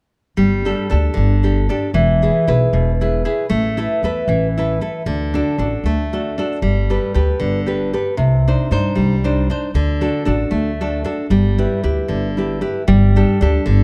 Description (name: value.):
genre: italian folk, Italian serenade.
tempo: 77 BPM (dotted quarters).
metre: 6/8.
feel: straight.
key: G major.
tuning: A4 = 441 Hz.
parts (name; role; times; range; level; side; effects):
nylon-string guitar; accompaniment; 0.4-13.8 s; B2 to C5; -20 LUFS; equal; none.
upright bass; bass; 0.4-13.8 s; E1 to G2; -20 LUFS; equal; none.
room: moderate recital hall reverb, RT60 1.8 s.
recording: dark, warm production.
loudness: -17 LUFS.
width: mono.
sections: 0.4-12.9 A section.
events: none.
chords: 0.4 Gsus2; 1.9 E; 3.5 Asus2; 5.1 D; 6.6 Gadd9; 8.2 Cmadd9; 9.8 D; 11.3 G6; 12.9 Gsus2.